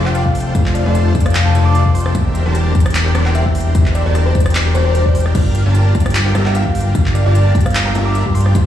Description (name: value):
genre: future bass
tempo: 150 BPM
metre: 4/4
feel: swing 54% on 16ths, half-time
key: G dorian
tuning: A4 = 439 Hz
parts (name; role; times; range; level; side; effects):
- dense compressed supersaw; riff; 0.0-8.7 s; D4 to A5; -21 LUFS; right 1 dB; sidechain pumping, dub echo
- fat analog bass; bass; 0.0-8.7 s; D1 to G2; -14 LUFS; left 1 dB; sidechain pumping
- thumb-piano-like synth pluck; melody; 0.1-8.6 s; C5 to D6; -23 LUFS; right 1 dB; chorus, vintage 12-bit sampler grit, sidechain pumping, digital delay
- trap drum kit; drums; 0.1-8.6 s; crash cymbal, handclaps, hi-hat, rim click; -23 LUFS; equal; none
- electronic kick drum; drums; 0.3-8.6 s; none; -15 LUFS; left 1 dB; none
room: digital ambience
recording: played on a big sound system in a bare room, large studio reverb, small room ambience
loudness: -12 LUFS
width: side -11 dB against mid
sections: 0.0-8.7 A section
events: none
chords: 0.0 F6; 2.1 C9/E; 5.3 Gm7